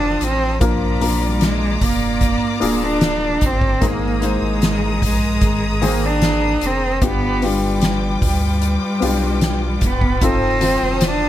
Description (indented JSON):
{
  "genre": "pop ballad",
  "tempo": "75 BPM",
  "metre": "4/4",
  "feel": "straight",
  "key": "Ab lydian",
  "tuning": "A4 = 445 Hz",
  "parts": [
    { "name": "warm cello", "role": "melody", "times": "0.0-11.3 s", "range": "F3 to D4", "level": "-20 LUFS", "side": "right 1 dB", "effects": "none" },
    { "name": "warm baby grand piano", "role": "accompaniment", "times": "0.0-11.3 s", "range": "G2 to C5", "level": "-23 LUFS", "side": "left 3 dB", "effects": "none" },
    { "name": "clear studio string section", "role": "sustained chords", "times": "0.0-11.3 s", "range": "F4 to Eb6", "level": "-27 LUFS", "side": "left 2 dB", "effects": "none" },
    { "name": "saturated sub bass", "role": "bass", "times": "0.0-11.3 s", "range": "D1 to D2", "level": "-23 LUFS", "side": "equal", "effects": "none" },
    { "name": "soft-mallet drum kit", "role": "drums", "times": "0.2-11.2 s", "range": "hi-hat, kick drum, snare drum", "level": "-21 LUFS", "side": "equal", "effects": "none" }
  ],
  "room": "little or no reverb",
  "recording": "none",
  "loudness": "-15 LUFS",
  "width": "side -12 dB against mid",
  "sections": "0.0-11.3 A section",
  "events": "none",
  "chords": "0.0 F7; 0.6 Bb; 3.8 Absus2; 7.0 G7; 10.2 F7",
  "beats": "| 0.62 1.42 2.22 3.02 | 3.82 4.62 5.42 6.22 | 7.02 7.82 8.62 9.42 | 10.22 11.02"
}